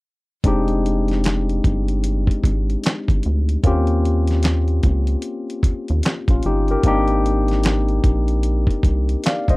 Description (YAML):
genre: R&B, neo-soul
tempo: 75 BPM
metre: 4/4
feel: swing 62% on 16ths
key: F dorian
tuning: A4 = 440 Hz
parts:
  - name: barky tine electric piano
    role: accompaniment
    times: 0.4-9.6 s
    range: Ab3 to F5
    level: -22 LUFS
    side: left 2 dB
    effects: overdrive
  - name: rubbery square bass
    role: bass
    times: 0.4-9.6 s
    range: F1 to Eb2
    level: -19 LUFS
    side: equal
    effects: none
  - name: dusty soul sampler-style drum kit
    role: drums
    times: 0.4-9.6 s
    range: handclaps, hi-hat, kick drum, snare drum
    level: -19 LUFS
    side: equal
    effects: none
room: little or no reverb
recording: dry, close 1970s-style studio recording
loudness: -16 LUFS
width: side -22 dB against mid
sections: 0.4-9.6 A section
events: none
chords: 0.4 Fm9; 3.6 Eb9; 6.8 Abmaj9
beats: | 0.44 1.24 2.04 2.84 | 3.64 4.44 5.24 6.04 | 6.84 7.64 8.44 9.24